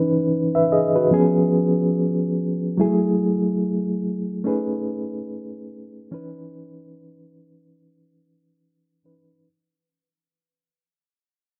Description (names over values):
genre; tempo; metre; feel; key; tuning
soul; 72 BPM; 4/4; swing 58% on 16ths; unclear; A4 = 441 Hz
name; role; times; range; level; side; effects
reed electric piano; solo; 0.0-9.5 s; E3 to E5; -22 LUFS; equal; fast tremolo
room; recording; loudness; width
light reverb; none; -21 LUFS; mono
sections
0.0-9.5 A section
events
fade-out 0.0-9.5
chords
0.0 C#m9; 1.1 C#7; 2.8 F#m9; 4.5 B13; 6.1 C#m9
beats
0.30 1.13 1.97 | 2.80 3.63 4.47 5.30 | 6.13 6.97 7.80 8.63